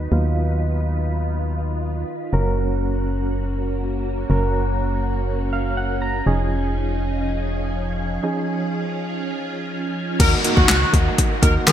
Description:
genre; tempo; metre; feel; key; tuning
dance-pop; 122 BPM; 4/4; straight; unclear; A4 = 437 Hz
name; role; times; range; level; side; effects
soft electric-piano-like synth keys; accompaniment; 0.0-11.7 s; F3 to Bb5; -26 LUFS; right 3 dB; chorus, tremolo, sidechain pumping, low-pass filter
ensemble organ-string; sustained chords; 0.0-11.7 s; Eb3 to B4; -27 LUFS; equal; phaser, ensemble chorus, sidechain pumping, low-pass filter
organ-like FM bass; bass; 0.0-11.7 s; F1 to Eb3; -22 LUFS; equal; sidechain pumping
clear horn section; melody; 10.2-11.7 s; Gb4 to Bb4; -22 LUFS; left 1 dB; sidechain pumping, digital delay
deep house drum kit; drums; 10.2-11.7 s; crash cymbal, handclaps, hi-hat, kick drum, snare drum; -16 LUFS; left 1 dB; overdrive, gated reverb
downlifter; sound effects; 10.2-11.7 s; none; -25 LUFS; equal; none
room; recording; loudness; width
moderate lush hall reverb, RT60 1.6 s, digital ambience; bright 1980s-style digital production; -19 LUFS; side -10 dB against mid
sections
0.0-10.2 A section; 10.2-11.7 B section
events
filter sweep 0.0-10.2; synth keys fill 5.3-6.3; break 8.2-10.2; drop 10.2-11.7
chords
0.0 B/D#; 2.3 Gb; 6.3 Dbadd9/F; 10.2 Ebm

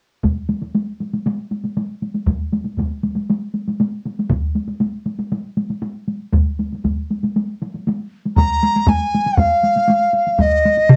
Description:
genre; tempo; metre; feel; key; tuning
japanese traditional, taiko drum ensemble; 118 BPM; 4/4; straight; unclear; A4 = 440 Hz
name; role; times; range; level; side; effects
taiko ensemble; percussion; 0.2-11.0 s; none; -23 LUFS; equal; none
taiko ensemble; percussion; 0.2-10.5 s; none; -21 LUFS; equal; none
mellow hollow dizi; melody; 8.4-11.0 s; Eb5 to Bb5; -18 LUFS; equal; cassette tape, plate reverb
taiko ensemble; percussion; 8.9-9.5 s; none; -20 LUFS; equal; none
taiko ensemble; percussion; 10.9-11.0 s; none; -8 LUFS; equal; none
room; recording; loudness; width
moderate booth ambience, RT60 0.2 s; home recording on cassette; -20 LUFS; mono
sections
0.2-8.4 A section; 8.4-11.0 B section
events
none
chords
none

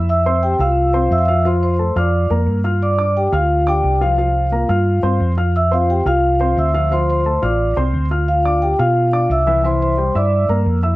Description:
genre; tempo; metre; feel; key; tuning
latin; 176 BPM; 4/4; straight; F major; A4 = 440 Hz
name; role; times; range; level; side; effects
dark grand piano; accompaniment; 0.0-11.0 s; E3 to F6; -22 LUFS; left 2 dB; none
hollow-body short-scale fingered electric bass; bass; 0.0-11.0 s; A1 to B2; -18 LUFS; equal; none
vibraphone with soft mallets; melody; 0.1-10.5 s; F4 to E6; -17 LUFS; equal; none
room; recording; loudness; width
light reverb; close, detailed microphones; -14 LUFS; side -18 dB against mid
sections
0.0-5.5 A section; 5.5-11.0 A section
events
none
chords
0.1 F5; 1.4 Bbmaj9/F; 2.8 G5; 4.2 C7sus4; 5.5 Fsus2; 6.9 Dm7; 8.3 G7/D (rootless); 9.6 C7

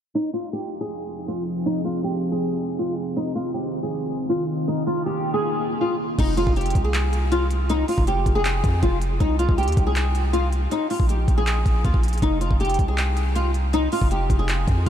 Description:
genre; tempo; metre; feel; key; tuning
hip hop, trap; 159 BPM; 4/4; half-time; F minor; A4 = 440 Hz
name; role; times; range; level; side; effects
flamenco guitar; melody; 0.1-14.9 s; Eb4 to Ab4; -24 LUFS; equal; analog chorus
deep dark ambient pad; sustained chords; 1.1-6.2 s; Eb3 to G5; -28 LUFS; equal; chorus, built-in reverb
long sustained 808-style bass; bass; 6.2-14.9 s; F1 to F2; -22 LUFS; equal; none
trap drum kit; drums; 6.2-14.9 s; crash cymbal, handclaps, hi-hat, kick drum; -24 LUFS; equal; vintage 12-bit sampler grit
room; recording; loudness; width
moderate huge ambient reverb, RT60 6.2 s; dreamy mix soaked in reverb, low-pass filter; -20 LUFS; side -10 dB against mid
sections
0.1-6.2 A section; 6.2-14.9 B section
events
filter sweep 0.1-6.2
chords
0.1 Fm; 3.2 Cm; 4.7 Bbsus4; 6.2 Fm; 9.2 N.C.; 10.7 Bb7(no3); 12.2 Fm

